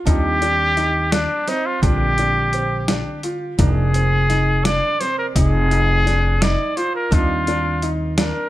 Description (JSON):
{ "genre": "progressive instrumental, band music in an uneven meter", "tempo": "170 BPM (eighths)", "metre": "5/8", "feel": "straight", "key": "F dorian", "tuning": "A4 = 444 Hz", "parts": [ { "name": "archtop guitar, miked and amplified", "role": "accompaniment", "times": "0.0-8.5 s", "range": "C3 to F4", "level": "-28 LUFS", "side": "right 3 dB", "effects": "none" }, { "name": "clear trumpet", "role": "melody", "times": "0.1-8.5 s", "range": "D4 to D5", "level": "-20 LUFS", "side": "equal", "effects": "tape echo" }, { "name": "clear concert grand piano", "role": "arpeggios", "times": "0.1-8.5 s", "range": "C4 to F4", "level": "-26 LUFS", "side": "left 1 dB", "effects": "none" }, { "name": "upright bass", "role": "bass", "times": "0.1-8.3 s", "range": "F1 to Eb2", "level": "-20 LUFS", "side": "equal", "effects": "none" }, { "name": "boom bap sampler-style drum kit", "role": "drums", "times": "0.1-8.3 s", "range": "hi-hat, kick drum, snare drum", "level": "-21 LUFS", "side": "equal", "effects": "none" } ], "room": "light reverb", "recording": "none", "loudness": "-16 LUFS", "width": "side -15 dB against mid", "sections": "0.0-8.5 A section", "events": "none", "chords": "0.1 Ebadd9; 1.8 Bb; 3.6 Fm7; 7.1 Ebadd9" }